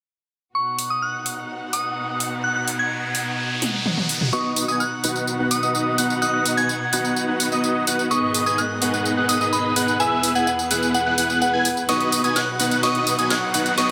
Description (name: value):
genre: EDM, festival progressive house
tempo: 127 BPM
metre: 4/4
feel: straight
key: B major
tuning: A4 = 441 Hz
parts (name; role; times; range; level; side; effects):
- soft synth bell; melody; 0.5-13.9 s; F#5 to G#6; -27 LUFS; equal; chorus, delay
- rich studio string section; sustained chords; 0.5-13.9 s; E2 to F#5; -31 LUFS; equal; none
- riser; sound effects; 2.0-4.3, 13.4-13.9 s; none; -32 LUFS; equal; none
- big-room dance drum kit; drums; 0.8-13.9 s; hi-hat, snare drum, tambourine, toms; -27 LUFS; equal; high-pass filter on hats, high-pass filter on toms, high-pass filter on perc, high-pass filter on snare, high-pass filter on room
- unison lead; arpeggios; 4.3-13.9 s; D#6 to G#6; -28 LUFS; equal; delay
- dense compressed supersaw; riff; 4.3-13.9 s; B3 to G#5; -26 LUFS; equal; low-pass filter
room: moderate huge ambient reverb, RT60 4.9 s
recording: none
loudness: -21 LUFS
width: mono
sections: 0.5-4.3 A section; 4.3-13.9 B section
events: riser 2.0-4.3; drum fill 3.6-4.3, 11.9-13.9; build-up 4.3-13.9; filter sweep on supersaw synth 4.3-13.9; filter sweep on analog synth lead 4.3-13.9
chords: 0.5 B; 8.1 G#m; 10.0 E; 11.9 B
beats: | 0.55 1.02 1.49 1.97 | 2.44 2.91 3.38 3.86 | 4.33 4.80 5.27 5.75 | 6.22 6.69 7.16 7.64 | 8.11 8.58 9.05 9.53 | 10.00 10.47 10.94 11.41 | 11.89 12.36 12.83 13.30 | 13.78